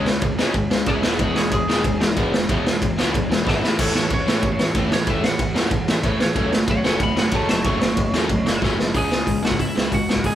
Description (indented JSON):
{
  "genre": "punk rock",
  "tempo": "186 BPM",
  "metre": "4/4",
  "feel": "straight",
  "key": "C# minor",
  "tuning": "A4 = 440 Hz",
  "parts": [
    { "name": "lightly driven lead guitar", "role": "melody", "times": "0.0-10.3 s", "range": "E4 to C#6", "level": "-26 LUFS", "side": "equal", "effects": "none" },
    { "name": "crunchy overdriven guitar", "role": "riff", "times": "0.0-10.3 s", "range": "A2 to C#4", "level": "-23 LUFS", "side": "equal", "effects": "none" },
    { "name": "fuzz picked electric bass", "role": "bass", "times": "0.0-10.3 s", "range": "E1 to B2", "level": "-29 LUFS", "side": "equal", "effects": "overdrive" },
    { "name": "raw garage drum kit", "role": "drums", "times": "0.1-10.3 s", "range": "crash cymbal, hi-hat, kick drum, ride cymbal, snare drum", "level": "-20 LUFS", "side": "equal", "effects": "none" }
  ],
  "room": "little or no reverb",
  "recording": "band playing live in one room",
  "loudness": "-18 LUFS",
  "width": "side -11 dB against mid",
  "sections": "0.0-8.9 A section; 8.9-10.3 B section",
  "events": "lead electric guitar solo 0.0-8.9; drum fill 3.5-3.8, 8.6-8.9",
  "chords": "0.0 C#5; 1.0 E; 3.6 A; 6.4 F#m; 8.9 C#m"
}